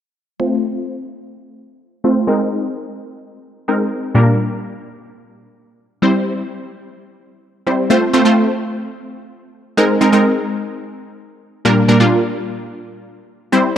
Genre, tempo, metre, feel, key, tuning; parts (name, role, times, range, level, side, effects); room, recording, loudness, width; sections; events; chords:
pop; 128 BPM; 4/4; straight; A4 = 440 Hz
wide unison pluck; accompaniment; 0.4-13.7 s; Bb2 to C5; -14 LUFS; equal; phaser, low-pass filter
moderate lush hall reverb, RT60 2.4 s; dark, warm production; -14 LUFS; side -9 dB against mid
0.4-7.9 A section; 7.9-13.8 B section
filter sweep on synth pluck 0.4-7.9
0.4 F; 2.3 Abadd9; 4.2 Gm/Bb; 6.0 C; 7.9 F; 9.8 Abadd9; 11.7 Gm/Bb